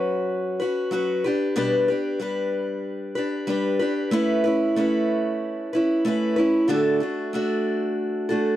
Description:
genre	pop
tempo	94 BPM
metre	4/4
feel	straight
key	D major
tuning	A4 = 440 Hz
part	picked steel-string acoustic guitar	solo	0.0-8.6 s	A2 to B4	-21 LUFS	equal	none
room	light reverb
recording	dry, close 1970s-style studio recording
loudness	-21 LUFS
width	side -13 dB against mid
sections	0.0-8.6 A section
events	none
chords	0.0 Bsus2; 1.2 G/B; 4.1 Aadd9; 6.7 D/A

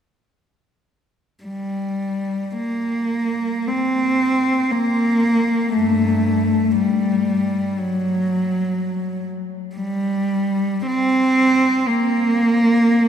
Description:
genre	classical, free, expressive piece for unaccompanied cello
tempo	free time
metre	none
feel	none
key	G minor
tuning	A4 = 440 Hz
part	warm cello	solo	1.4-13.1 s	G2 to C4	-17 LUFS	equal	none
room	wet cathedral reverb, RT60 4.6 s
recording	minimal, uncompressed stereo recording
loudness	-17 LUFS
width	side -8 dB against mid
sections	1.5-13.1 A section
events	none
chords	none

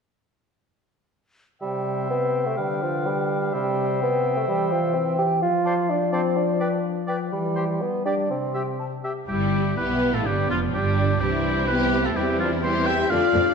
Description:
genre	quick classical-period movement for symphony orchestra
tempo	126 BPM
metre	2/4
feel	straight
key	C major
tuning	A4 = 440 Hz
part	mellow clarinet	second line	1.6-9.1 s	G4 to C5	-33 LUFS	left 2 dB	none
part	mellow hollow silver concert flute	second line	1.6-9.1 s	G5 to A5	-33 LUFS	left 2 dB	none
part	warm oboe	second line	1.6-13.5 s	F4 to G5	-29 LUFS	right 1 dB	none
part	mellow bassoon	accompaniment	1.6-8.8 s	F3 to G4	-24 LUFS	right 2 dB	none
part	mellow French horn section	sustained chords	1.6-13.5 s	C3 to G4	-27 LUFS	left 4 dB	none
part	warm studio violin section	melody	9.3-13.5 s	D4 to E5	-31 LUFS	left 5 dB	none
part	rich studio violin section	second line	9.3-13.4 s	G3 to F4	-30 LUFS	left 2 dB	none
part	rich studio viola section	accompaniment	9.3-13.4 s	D3 to B3	-28 LUFS	equal	none
part	dark studio double bass section	bass	9.3-13.4 s	F1 to F2	-26 LUFS	right 5 dB	none
part	warm studio cello section	bass	9.8-13.5 s	B3 to G4	-31 LUFS	right 4 dB	none
room	wet scoring stage reverb, RT60 2.0 s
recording	dark, warm production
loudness	-21 LUFS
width	side -5 dB against mid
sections	1.6-9.3 A section; 9.3-13.5 B section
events	none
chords	1.6 C; 2.6 G7/D; 3.5 C; 4.5 C/E; 5.4 Dm7/F; 6.4 G7(no3)/F; 7.3 C/E (rootless); 7.8 G; 8.3 C5; 9.3 G69; 10.3 G7; 11.2 C; 12.2 C/E

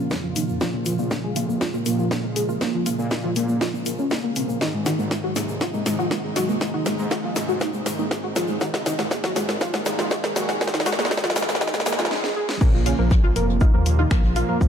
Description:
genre	melodic techno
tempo	120 BPM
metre	4/4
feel	straight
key	Bb minor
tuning	A4 = 442 Hz
part	fat analog lead	melody	0.0-14.7 s	F3 to Ab4	-27 LUFS	equal	chorus, ping-pong delay
part	airy dreamy lead	second line	0.0-14.7 s	F2 to Ab3	-34 LUFS	equal	none
part	lush unison pad	sustained chords	0.0-14.7 s	C3 to F4	-34 LUFS	equal	chorus, sidechain pumping
part	tight sequenced synth	arpeggios	0.0-14.6 s	F3 to F5	-30 LUFS	equal	chorus, phaser, sidechain pumping, ping-pong delay
part	analog synth brass	stabs	0.0-14.7 s	Ab2 to Bb3	-30 LUFS	right 2 dB	chorus, sidechain pumping
part	dark detuned saw bass	bass	0.0-14.7 s	Eb1 to Bb2	-29 LUFS	equal	none
part	electronic kick drum	drums	0.1-14.7 s	none	-22 LUFS	equal	high-pass filter on kick, high-pass filter on room
part	house drum kit	drums	0.1-14.5 s	crash cymbal, finger snaps, hi-hat, snare drum	-26 LUFS	equal	none
part	egg shaker	percussion	0.1-12.1 s	none	-39 LUFS	left 4 dB	none
part	jazz brush drum kit	drums	12.6-14.7 s	hi-hat, shaker, snare drum	-40 LUFS	left 1 dB	sidechain pumping on hats, high-pass filter on hats, high-pass filter on snare, sidechain pumping on perc, high-pass filter on perc, high-pass filter on room
room	moderate lush hall reverb, RT60 2.0 s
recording	dark, warm production, high-pass filter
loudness	-20 LUFS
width	side -8 dB against mid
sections	0.0-12.6 A section; 12.6-14.7 B section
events	build-up 0.0-12.6; drum fill 0.0-12.1, 12.1-12.6; filter sweep on synth arpeggio sound 0.0-12.6; filter sweep on analog synth lead 0.0-12.6; filter sweep on analog polysynth 0.0-12.6; filter sweep 0.0-12.6; drop 12.6-14.7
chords	0.0 Bbm; 4.6 Ab; 12.6 Bbm

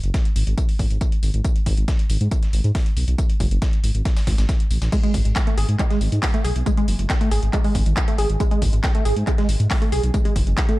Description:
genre	driving peak-time techno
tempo	138 BPM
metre	4/4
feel	straight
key	G# phrygian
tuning	A4 = 440 Hz
part	dark detuned saw bass	bass	0.0-10.5 s	F#1 to G#2	-20 LUFS	equal	sidechain pumping
part	techno drum kit	drums	0.0-10.8 s	crash cymbal, handclaps, hi-hat	-30 LUFS	equal	sidechain pumping on hats, sidechain pumping on cymbals
part	dusty soul sampler-style drum kit	drums	0.1-10.7 s	hi-hat, snare drum, tambourine	-38 LUFS	left 2 dB	high-pass filter on perc, high-pass filter on hats, high-pass filter on snare
part	electronic kick drum	drums	0.1-10.7 s	none	-20 LUFS	equal	none
part	tight sequenced synth	riff	4.9-10.8 s	G#3 to G#4	-25 LUFS	right 1 dB	chorus, phaser, sidechain pumping, tape echo
room	digital ambience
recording	dark, warm production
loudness	-18 LUFS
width	side -18 dB against mid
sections	0.0-10.8 A section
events	none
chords	0.0 G#5

